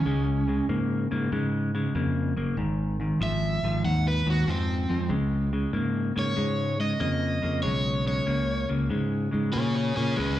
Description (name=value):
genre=electric blues shuffle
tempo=95 BPM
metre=4/4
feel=swing 67% on 8ths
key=Db mixolydian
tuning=A4 = 440 Hz
part: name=crunchy overdriven guitar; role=melody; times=0.0-10.4 s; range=C4 to Gb5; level=-31 LUFS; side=right 2 dB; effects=slapback echo, tape echo
part: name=clean electric guitar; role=riff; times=0.0-10.4 s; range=Ab2 to Bb3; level=-27 LUFS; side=left 2 dB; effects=slapback echo
part: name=fingered electric bass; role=bass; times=0.0-10.4 s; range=Gb1 to Bb2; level=-28 LUFS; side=right 1 dB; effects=none
room=little or no reverb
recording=live gig heard through the venue's PA, club reverb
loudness=-24 LUFS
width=side -13 dB against mid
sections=0.0-5.1 A section; 5.1-10.4 B section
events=overdriven electric guitar solo 5.1-10.4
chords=0.1 Db; 2.6 Ab; 5.1 Db5